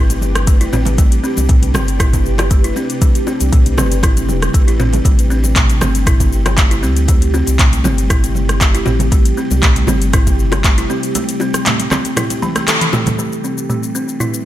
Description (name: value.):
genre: afro house.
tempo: 118 BPM.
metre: 4/4.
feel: straight.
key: A minor.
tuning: A4 = 440 Hz.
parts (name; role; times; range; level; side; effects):
ethereal airy pad; sustained chords; 0.0-14.4 s; C3 to B4; -23 LUFS; equal; ensemble chorus, built-in reverb, phaser, sidechain pumping.
buzzing kalimba; arpeggios; 0.0-14.3 s; E3 to A4; -21 LUFS; equal; sidechain pumping, low-pass filter, digital delay.
warm sub bass; bass; 0.0-10.9 s; E1 to D2; -16 LUFS; equal; sidechain pumping.
afro-pop drum kit; drums; 0.1-14.4 s; handclaps, hi-hat, rim click, shaker, toms; -19 LUFS; equal; studio reverb.
congas; percussion; 0.1-13.2 s; none; -25 LUFS; right 4 dB; none.
bongos; percussion; 0.2-13.0 s; none; -24 LUFS; left 4 dB; none.
electronic kick drum; drums; 0.5-10.8 s; none; -12 LUFS; equal; studio reverb.
room: light reverb, digital ambience.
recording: none.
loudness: -12 LUFS.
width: side -13 dB against mid.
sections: 0.0-13.2 A section; 13.2-14.4 B section.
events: break 11.2-13.2; drum fill 12.4-13.2; band accent 12.7; filter sweep on kalimba 13.2-14.4; filter sweep on ambient pad 13.2-14.4.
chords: 0.0 Am11; 5.1 Gsus24; 13.2 Am11.